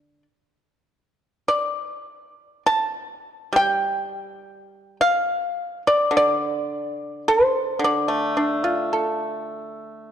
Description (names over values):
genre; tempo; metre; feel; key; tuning
chinese traditional, Chinese solo plucked strings; 48-54 BPM; 4/4; rubato; D yu mode; A4 = 442 Hz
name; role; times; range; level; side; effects
pipa; solo; 0.0-10.1 s; D3 to A5; -20 LUFS; equal; none
room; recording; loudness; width
moderate concert hall reverb, RT60 2.1 s; dark, warm production; -20 LUFS; side -9 dB against mid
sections
0.0-1.5 A section; 1.5-10.1 B section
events
none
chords
none